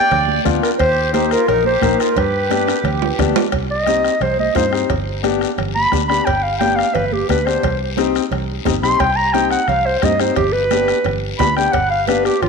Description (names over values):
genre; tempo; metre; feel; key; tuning
latin, cumbia; 175 BPM; 4/4; straight; C harmonic minor; A4 = 440 Hz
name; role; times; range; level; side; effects
warm clarinet; melody; 0.0-12.5 s; F4 to C6; -17 LUFS; equal; slapback echo
accordion; second line; 0.0-3.2 s; Eb4 to D5; -24 LUFS; right 8 dB; slapback echo
fingered electric bass; bass; 0.1-12.5 s; G1 to G2; -24 LUFS; equal; none
bombo; percussion; 0.1-12.5 s; none; -26 LUFS; equal; none
congas; percussion; 0.1-12.5 s; none; -26 LUFS; right 13 dB; none
cowbell and timbales; percussion; 0.1-12.5 s; none; -26 LUFS; right 12 dB; none
guiro; percussion; 0.1-12.5 s; none; -32 LUFS; left 13 dB; none
clear upright piano; accompaniment; 0.4-12.3 s; Bb3 to Bb4; -22 LUFS; left 10 dB; none
room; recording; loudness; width
moderate echo chamber reverb, RT60 2.1 s; 1960s-style stereo with parts hard left and right; -14 LUFS; side -4 dB against mid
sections
0.0-3.5 A section; 3.5-12.5 B section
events
drum fill 2.7-3.5; clarinet solo 3.5-12.5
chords
0.0 G7; 0.8 Eb; 2.2 G; 3.5 Cm; 4.9 G; 7.6 Cm; 10.4 G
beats
0.11 0.46 | 0.80 1.14 1.48 1.82 | 2.17 2.51 2.85 3.19 | 3.53 3.88 4.22 4.56 | 4.90 5.24 5.58 5.93 | 6.27 6.61 6.95 7.29 | 7.64 7.98 8.32 8.66 | 9.00 9.35 9.69 10.03 | 10.37 10.71 11.06 11.40 | 11.74 12.09 12.43